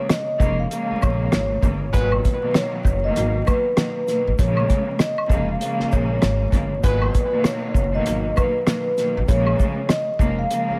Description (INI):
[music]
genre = hip hop, boom-bap hip-hop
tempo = 98 BPM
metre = 4/4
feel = swing 61% on 16ths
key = unclear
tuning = A4 = 438 Hz
[part]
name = vibraphone with medium mallets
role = melody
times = 0.0-10.8 s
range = B4 to E#5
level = -26 LUFS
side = equal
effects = high-pass filter, low-pass filter, tape echo
[part]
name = warm studio string section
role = accompaniment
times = 0.0-10.8 s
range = A#2 to A#3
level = -28 LUFS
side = equal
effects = cassette tape, high-pass filter, low-pass filter
[part]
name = cloth-damped thuddy drum kit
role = drums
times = 0.1-10.7 s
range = hi-hat, kick drum, rim click, shaker, snare drum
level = -22 LUFS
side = equal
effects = none
[part]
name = tube shaker and woodblock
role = percussion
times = 0.1-10.7 s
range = none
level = -35 LUFS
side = equal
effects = none
[part]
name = upright bass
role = bass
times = 0.4-10.7 s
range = E#1 to A#1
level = -26 LUFS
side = equal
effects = none
[part]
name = warm horn section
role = stabs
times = 1.9-2.1, 6.8-7.3 s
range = G#3 to B4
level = -36 LUFS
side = equal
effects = high-pass filter, low-pass filter, tape echo
[sound]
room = studio ambience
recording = vinyl crackle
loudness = -21 LUFS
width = mono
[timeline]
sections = 0.0-10.8 A section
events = none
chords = 0.0 A#m7; 1.9 G#m7; 4.4 A#m7; 6.8 G#m7; 9.3 A#m7